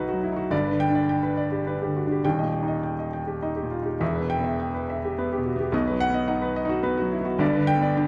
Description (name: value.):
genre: neoclassical minimalist piano.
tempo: 105 BPM.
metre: 3/4.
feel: rubato.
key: E minor.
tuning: A4 = 442 Hz.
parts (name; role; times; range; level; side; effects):
clear grand piano; solo; 0.0-8.1 s; D#1 to G5; -25 LUFS; equal; none.
room: light reverb.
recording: none.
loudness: -25 LUFS.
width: mono.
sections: 0.0-8.1 A section.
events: none.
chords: 0.0 B; 0.5 G; 2.2 D#; 4.0 Em; 5.7 B; 7.4 G.